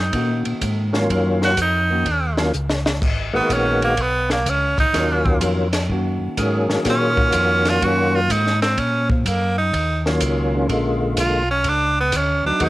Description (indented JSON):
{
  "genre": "soul jazz organ trio",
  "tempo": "125 BPM",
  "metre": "4/4",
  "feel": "swing 66% on 8ths",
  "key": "Eb minor",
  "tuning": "A4 = 444 Hz",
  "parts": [
    { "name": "edgy tenor saxophone", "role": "melody", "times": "0.0-12.7 s", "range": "F3 to Gb4", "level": "-20 LUFS", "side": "right 1 dB", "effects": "cassette tape" },
    { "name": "mellow tonewheel organ", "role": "bass", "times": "0.0-12.7 s", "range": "Ab1 to Bb2", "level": "-22 LUFS", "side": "equal", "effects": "chorus vibrato, slow rotary speaker" },
    { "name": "hollow-body jazz guitar", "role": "accompaniment", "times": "0.1-2.1, 5.9-12.7 s", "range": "Eb3 to Gb4", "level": "-27 LUFS", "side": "equal", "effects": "cassette tape" },
    { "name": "compact cocktail drum kit", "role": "drums", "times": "0.1-12.7 s", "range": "crash cymbal, hi-hat, kick drum, ride cymbal, snare drum", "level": "-24 LUFS", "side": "equal", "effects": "cassette tape" },
    { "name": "percussive tonewheel organ", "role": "melody", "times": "0.9-12.7 s", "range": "D3 to Ab4", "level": "-21 LUFS", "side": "left 1 dB", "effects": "slow rotary speaker, overdrive, chorus vibrato, cassette tape" }
  ],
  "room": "light reverb, studio reverb",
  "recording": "home recording on cassette",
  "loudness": "-17 LUFS",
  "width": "side -17 dB against mid",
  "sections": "0.0-12.7 A section",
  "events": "tenor saxophone solo 0.0-12.7; drum fill 2.5-3.0",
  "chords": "0.0 Ebm7; 3.0 Abm7; 4.9 Ebm7; 10.7 Bb7#9",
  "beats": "0.14 0.62 | 1.10 1.58 2.06 2.54 | 3.02 3.50 3.98 4.46 | 4.94 5.42 5.90 6.38 | 6.86 7.34 7.82 8.30 | 8.78 9.26 9.74 10.22 | 10.70 11.18 11.66 12.13 | 12.61"
}